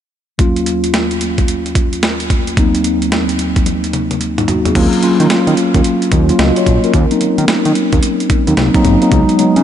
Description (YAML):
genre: R&B, new jack swing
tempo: 110 BPM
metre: 4/4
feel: swing 64% on 16ths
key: Eb minor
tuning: A4 = 440 Hz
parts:
  - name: mellow tine electric piano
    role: accompaniment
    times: 0.4-9.6 s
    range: Eb2 to Eb5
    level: -13 LUFS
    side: left 1 dB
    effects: medium stereo tremolo
  - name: boom bap sampler-style drum kit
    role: drums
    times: 0.4-9.6 s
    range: crash cymbal, hi-hat, kick drum, snare drum, toms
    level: -16 LUFS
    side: right 1 dB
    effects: overdrive
  - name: fat analog bass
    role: bass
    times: 4.8-9.6 s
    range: Ab1 to Eb3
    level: -15 LUFS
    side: equal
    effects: none
room: moderate huge ambient reverb, RT60 4.0 s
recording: dreamy mix soaked in reverb, nothing above 11.0 kHz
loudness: -11 LUFS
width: side -10 dB against mid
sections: 0.4-4.8 A section; 4.8-9.6 B section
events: drum fill 3.7-4.8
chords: 0.4 Ebm7; 2.6 Ebm6; 4.8 Ebm7; 6.9 Ab7/Eb (rootless); 9.1 Db7sus4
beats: | 0.39 0.94 1.48 2.03 | 2.57 3.12 3.66 4.21 | 4.75 5.30 5.84 6.39 | 6.93 7.48 8.03 8.57 | 9.12